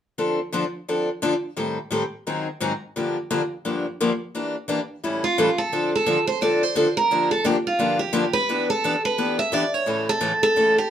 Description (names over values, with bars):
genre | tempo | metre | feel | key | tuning
jazz | 174 BPM | 4/4 | swing 60% on 8ths | D minor | A4 = 440 Hz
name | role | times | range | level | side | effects
picked steel-string acoustic guitar | accompaniment | 0.2-10.8 s | G2 to A4 | -23 LUFS | left 2 dB | none
picked steel-string acoustic guitar | melody | 5.2-10.9 s | F4 to E5 | -21 LUFS | right 2 dB | none
room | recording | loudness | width
wet small room reverb, RT60 0.5 s | band playing live in one room | -20 LUFS | side -9 dB against mid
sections
0.2-5.7 A section; 5.7-10.9 B section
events
none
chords
0.2 Dm7; 1.6 Am7b5; 2.3 G#7; 2.9 Gm7; 4.3 Em7b5; 5.0 A7b13; 5.7 Dm7; 7.1 Gm7; 8.5 Em7; 9.9 A